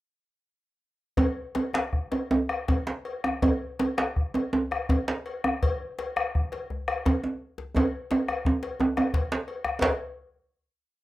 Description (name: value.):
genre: west african traditional, West African drum ensemble.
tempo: 106-123 BPM (dotted quarters).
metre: 12/8.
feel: straight.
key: none.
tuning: none.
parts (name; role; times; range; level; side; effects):
bombo; percussion; 1.2-10.0 s; none; -27 LUFS; left 1 dB; none.
cowbell; percussion; 1.2-10.0 s; none; -35 LUFS; left 3 dB; none.
djembe; percussion; 1.2-10.0 s; none; -38 LUFS; left 3 dB; none.
djembe; percussion; 1.2-10.0 s; none; -26 LUFS; right 2 dB; none.
room: moderate studio ambience, RT60 0.5 s.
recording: rough home demo mix.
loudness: -25 LUFS.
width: side -16 dB against mid.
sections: 1.2-9.8 A section; 9.8-11.0 final hit.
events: speeding up 1.2-11.0; drum fill 7.8-9.8.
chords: none.